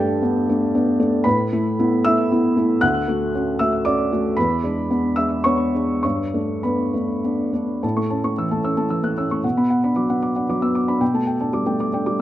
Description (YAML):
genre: neoclassical minimalist piano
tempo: 99-119 BPM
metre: 3/4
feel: rubato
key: A major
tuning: A4 = 439 Hz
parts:
  - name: felt-muted upright piano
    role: solo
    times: 0.0-12.2 s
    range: D2 to F#6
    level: -18 LUFS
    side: equal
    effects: slapback echo
room: moderate studio ambience, RT60 0.5 s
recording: rough home demo mix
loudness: -18 LUFS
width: side -13 dB against mid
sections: 0.0-7.8 A section; 7.8-12.2 B section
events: none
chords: 0.0 Gadd9; 1.3 Asus2; 2.8 Dmaj7; 4.4 E7; 6.0 Gadd9; 7.8 A; 9.4 Bm; 11.0 Gadd9/B